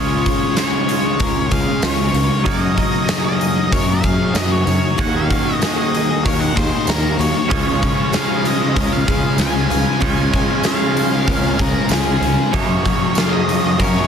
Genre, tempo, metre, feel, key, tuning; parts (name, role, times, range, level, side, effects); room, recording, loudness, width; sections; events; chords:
rock, shoegaze and dream pop; 95 BPM; 4/4; straight; Db major; A4 = 440 Hz
octave-fuzz lead guitar; melody; 0.0-14.1 s; Ab4 to Ab5; -23 LUFS; left 1 dB; distortion, tape echo
picked twelve-string acoustic guitar; arpeggios; 0.0-14.1 s; F4 to Bb4; -28 LUFS; left 3 dB; wide subtle chorus, tape echo
thick fuzz guitar; riff; 0.0-14.1 s; Gb2 to Eb4; -21 LUFS; left 7 dB; distortion, wide subtle chorus
twangy electric guitar; riff; 0.0-14.1 s; Db3 to Db5; -24 LUFS; right 11 dB; reverse reverb
fuzz fingered electric bass; bass; 0.0-14.1 s; Db2 to Gb2; -21 LUFS; right 1 dB; overdrive
huge arena drum kit; drums; 0.3-13.9 s; hi-hat, kick drum, snare drum; -20 LUFS; equal; soft clipping on kick
tambourine; percussion; 0.6-13.3 s; -31 LUFS; right 16 dB
distorted electric guitar; riff; 7.5-14.1 s; Gb2 to Db4; -24 LUFS; right 1 dB; overdrive
light reverb, studio reverb; dense, heavily limited modern master; -14 LUFS; side -7 dB against mid
0.0-14.1 A section
0.0 Db; 2.5 Gb6; 5.0 Ebm7; 7.5 Db; 12.5 Gb6